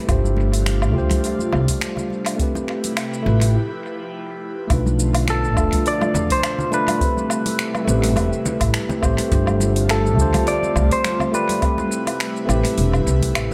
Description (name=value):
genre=sunset chillout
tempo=104 BPM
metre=4/4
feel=swing 55% on 16ths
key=A minor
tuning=A4 = 440 Hz
part: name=tine electric piano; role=accompaniment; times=0.0-13.5 s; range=A3 to D5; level=-26 LUFS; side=equal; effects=tape echo
part: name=airy breathy pad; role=sustained chords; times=0.0-13.5 s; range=B2 to B4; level=-31 LUFS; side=equal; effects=chorus, phaser
part: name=upright bass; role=bass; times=0.1-13.5 s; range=E1 to E2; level=-22 LUFS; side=equal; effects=none
part: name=deep house drum kit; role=drums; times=0.1-13.5 s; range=finger snaps, hi-hat, shaker, woodblock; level=-29 LUFS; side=equal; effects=overdrive, small room ambience, tape echo
part: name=electronic kick drum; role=drums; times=0.1-13.3 s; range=none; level=-25 LUFS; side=equal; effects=small room ambience
part: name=congas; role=percussion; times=0.2-13.5 s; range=none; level=-32 LUFS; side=equal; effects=none
part: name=clean electric guitar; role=melody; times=5.3-12.5 s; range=A4 to D5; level=-25 LUFS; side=equal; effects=spring reverb, tape echo
room=light reverb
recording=echo-heavy mix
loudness=-19 LUFS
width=mono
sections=0.0-4.7 A section; 4.7-13.5 B section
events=break 3.5-4.7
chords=0.1 G9sus4; 2.4 Am9; 3.5 G13; 4.7 Bm7b5; 7.0 Am9; 9.3 G9sus4; 11.6 Am9